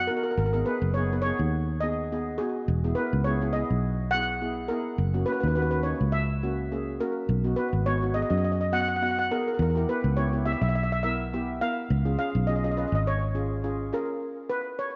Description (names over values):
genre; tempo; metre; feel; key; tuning
calypso; 104 BPM; 4/4; swing 53% on 16ths; unclear; A4 = 439 Hz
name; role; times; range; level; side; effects
steel pan; melody; 0.0-15.0 s; G#4 to F#5; -32 LUFS; equal; slapback echo
fingered electric bass; bass; 0.0-13.9 s; E1 to F#2; -29 LUFS; equal; none
steel pan; accompaniment; 0.1-14.2 s; A#3 to B4; -34 LUFS; equal; none
room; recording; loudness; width
light reverb, small room ambience; nothing above 7.5 kHz; -27 LUFS; mono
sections
0.0-15.0 A section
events
none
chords
0.4 G#m; 2.7 Eadd9; 5.0 F#; 7.3 B; 9.6 Em6; 11.9 C#7; 14.2 N.C.